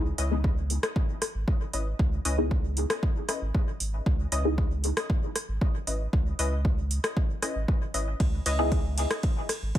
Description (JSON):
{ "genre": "dub techno", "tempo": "116 BPM", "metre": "4/4", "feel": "straight", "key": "C# minor", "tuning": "A4 = 441 Hz", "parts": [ { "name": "warm sub bass", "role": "bass", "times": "0.0-9.7 s", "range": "G#1 to C#2", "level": "-29 LUFS", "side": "equal", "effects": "sidechain pumping" }, { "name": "filtered dub chord stab", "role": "riff", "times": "0.2-8.6 s", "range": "C#4 to D#5", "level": "-36 LUFS", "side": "left 3 dB", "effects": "chorus, sidechain pumping, dub echo" }, { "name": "soft vintage rhythm box", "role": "drums", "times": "0.2-9.8 s", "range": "hi-hat, ride cymbal, rim click", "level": "-32 LUFS", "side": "equal", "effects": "dub echo" }, { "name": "filtered dub chord stab", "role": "stabs", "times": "0.3-4.6, 8.6-8.7 s", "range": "B3 to G#4", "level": "-31 LUFS", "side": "left 2 dB", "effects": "phaser, sidechain pumping, dub echo" }, { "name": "electronic kick drum", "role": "drums", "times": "0.4-9.8 s", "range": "none", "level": "-26 LUFS", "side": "equal", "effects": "overdrive" } ], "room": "digital ambience", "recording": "none", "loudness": "-25 LUFS", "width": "side -12 dB against mid", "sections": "0.0-9.8 A section", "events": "none", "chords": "0.0 C#m9" }